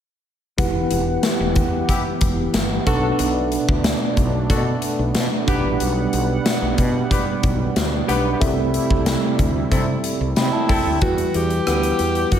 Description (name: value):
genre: 1980s-style pop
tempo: 92 BPM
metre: 4/4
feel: straight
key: E minor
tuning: A4 = 440 Hz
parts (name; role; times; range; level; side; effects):
- tine electric piano; accompaniment; 0.6-12.4 s; B2 to B5; -23 LUFS; equal; medium stereo tremolo
- warm analog pad; sustained chords; 0.6-11.0 s; C3 to F#5; -26 LUFS; right 1 dB; chorus
- woody fretless electric bass; bass; 0.6-12.4 s; E1 to C3; -24 LUFS; equal; none
- big rock drum kit; drums; 0.6-12.4 s; hi-hat, kick drum, rim click, snare drum; -21 LUFS; equal; none
- warm horn section; stabs; 1.9-10.9 s; B3 to B4; -29 LUFS; left 2 dB; analog delay
- breathy alto saxophone; melody; 10.4-12.4 s; E4 to G4; -22 LUFS; equal; analog delay
room: moderate plate reverb, RT60 1.6 s, studio reverb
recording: dreamy mix soaked in reverb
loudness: -17 LUFS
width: side -9 dB against mid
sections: 0.6-11.0 A section; 11.0-12.4 B section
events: tine electric piano fill 10.0-11.0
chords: 0.6 Emadd9; 2.9 Bm7; 5.5 Gmaj7; 8.4 C6; 11.0 Emadd9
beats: | 0.58 1.24 1.89 2.54 | 3.19 3.85 4.50 5.15 | 5.80 6.45 7.11 7.76 | 8.41 9.06 9.71 10.37 | 11.02 11.67 12.32